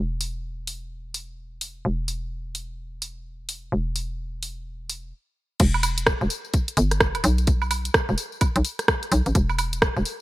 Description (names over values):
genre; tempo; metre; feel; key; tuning
UK garage, two-step garage; 128 BPM; 4/4; swing 62% on 16ths; E minor; A4 = 440 Hz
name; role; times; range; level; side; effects
hollow knocking FM bass; bass; 0.0-10.0 s; D1 to B1; -25 LUFS; equal; none
garage drum kit; drums; 0.2-10.2 s; crash cymbal, hi-hat, rim click, tambourine, woodblock; -24 LUFS; right 1 dB; none
electronic kick drum; drums; 5.6-9.9 s; none; -22 LUFS; equal; none
room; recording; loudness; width
little or no reverb; bright 1980s-style digital production; -21 LUFS; side -17 dB against mid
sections
0.0-5.6 A section; 5.6-10.2 B section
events
stop 5.1-5.6; drop 5.6-10.2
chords
none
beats
0.44 0.91 1.38 | 1.85 2.32 2.79 3.26 | 3.73 4.19 4.66 5.13 | 5.60 6.07 6.54 7.01 | 7.47 7.94 8.41 8.88 | 9.35 9.82